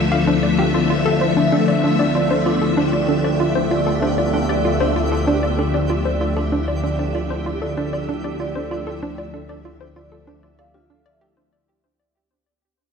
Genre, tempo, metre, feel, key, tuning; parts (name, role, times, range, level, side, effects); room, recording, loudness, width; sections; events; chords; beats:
ambient, sequencer-driven space music; 96 BPM; 4/4; straight; D dorian; A4 = 439 Hz
phased string machine; sustained chords; 0.0-11.5 s; D3 to E5; -20 LUFS; left 2 dB; ensemble chorus, phaser
vibraphone with medium mallets; arpeggios; 0.0-11.3 s; D4 to F5; -26 LUFS; moving between left 4 dB and right 3 dB; auto-pan, tape echo
hollow square pluck; riff; 0.0-11.5 s; D4 to F5; -23 LUFS; right 1 dB; chorus, tape echo
analog drone; bass; 0.0-11.5 s; D2; -27 LUFS; equal; chorus
twinkling granular texture; texture; 0.0-11.6 s; B3 to B4; -29 LUFS; right 2 dB; built-in reverb
wet echo chamber reverb, RT60 2.5 s; echo-heavy mix; -17 LUFS; side -6 dB against mid
0.0-11.5 A section
fade-in on synth texture 0.0-11.5; fade-out 4.9-11.5
0.0 Dmadd9
0.27 0.90 | 1.52 2.15 2.77 3.40 | 4.02 4.65 5.27 5.90 | 6.52 7.15 7.77 8.40 | 9.02 9.65 10.27 10.90